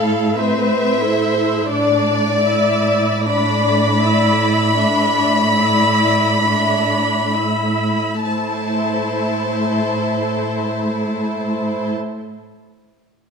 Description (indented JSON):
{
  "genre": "classical, slow romantic movement for string orchestra",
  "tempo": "31-46 BPM",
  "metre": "4/4",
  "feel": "rubato",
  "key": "A minor",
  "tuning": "A4 = 437 Hz",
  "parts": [
    { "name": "warm chamber violin section", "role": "melody", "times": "0.0-11.9 s", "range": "D5 to B5", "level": "-20 LUFS", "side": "left 3 dB", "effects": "none" },
    { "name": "rich chamber violin section", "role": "second line", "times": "0.0-11.9 s", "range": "E4 to E5", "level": "-22 LUFS", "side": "left 2 dB", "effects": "none" },
    { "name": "warm chamber viola section", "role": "accompaniment", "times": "0.0-11.9 s", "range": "A3 to E5", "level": "-21 LUFS", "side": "right 1 dB", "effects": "none" },
    { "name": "warm chamber cello section", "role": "bass", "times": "0.0-11.9 s", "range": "A2", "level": "-21 LUFS", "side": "right 2 dB", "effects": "none" }
  ],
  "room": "wet scoring stage reverb, RT60 1.6 s",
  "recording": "none",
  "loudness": "-15 LUFS",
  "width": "side -5 dB against mid",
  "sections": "0.0-8.3 A section; 8.3-13.3 B section",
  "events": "slowing down 0.0-8.3",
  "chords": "0.0 Am; 1.7 E5/A; 8.3 Am",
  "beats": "0.37 | 1.70 3.25 4.78 6.42 | 8.26 9.96 11.66"
}